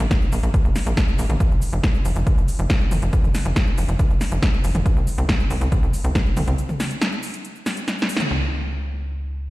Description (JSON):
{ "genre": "uplifting trance", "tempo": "139 BPM", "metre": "4/4", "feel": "straight", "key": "unclear", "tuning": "A4 = 439 Hz", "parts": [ { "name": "tight sequencer bass", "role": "bass", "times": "0.0-9.5 s", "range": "F1 to Db2", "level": "-21 LUFS", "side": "equal", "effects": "tube saturation, sidechain pumping" }, { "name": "techno drum kit", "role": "drums", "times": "0.0-8.3 s", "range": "hi-hat, shaker, snare drum, toms", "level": "-25 LUFS", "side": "equal", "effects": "none" }, { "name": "electronic kick drum", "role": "drums", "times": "0.1-6.2 s", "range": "none", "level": "-19 LUFS", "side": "equal", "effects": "none" } ], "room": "light reverb, digital ambience", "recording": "played on a big sound system in a bare room, stone room reverb", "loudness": "-18 LUFS", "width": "side -19 dB against mid", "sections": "0.0-8.3 A section; 8.3-9.5 B section", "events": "break 6.6-8.3; drum fill 7.9-8.3; band accent 8.2", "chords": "none", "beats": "0.11 0.54 0.97 | 1.40 1.83 2.27 2.70 | 3.13 3.56 3.99 4.42 | 4.86 5.29 5.72 6.15 | 6.58 7.01 7.45 7.88 | 8.31 8.74 9.17" }